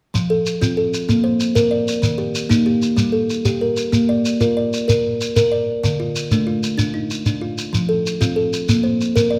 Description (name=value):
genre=southern african traditional, mbira-style interlocking cycle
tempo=126 BPM (dotted quarters)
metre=12/8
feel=straight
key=unclear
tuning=A4 = 441 Hz
part: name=kalimba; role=arpeggios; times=0.1-9.4 s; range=D3 to D5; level=-20 LUFS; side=equal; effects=none
part: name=shekere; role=percussion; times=0.1-9.3 s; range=none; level=-24 LUFS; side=equal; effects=none
room=moderate recital hall reverb, RT60 1.4 s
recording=none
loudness=-19 LUFS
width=mono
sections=0.1-9.4 A section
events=none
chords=0.1 F; 1.1 Bb; 2.0 Eb; 3.0 Gm; 3.9 Bb; 5.8 Dm; 7.7 F; 8.7 Bb